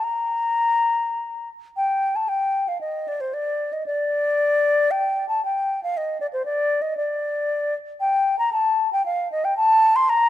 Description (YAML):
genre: classical, baroque-style fantasia for unaccompanied flute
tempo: 114 BPM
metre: 3/4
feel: rubato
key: unclear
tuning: A4 = 440 Hz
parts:
  - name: mellow concert flute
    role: solo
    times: 0.0-10.3 s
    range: C5 to C6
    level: -20 LUFS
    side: left 1 dB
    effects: none
room: light reverb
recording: close, detailed microphones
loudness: -20 LUFS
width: side -13 dB against mid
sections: 0.0-1.8 A section; 1.8-10.3 A section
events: none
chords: none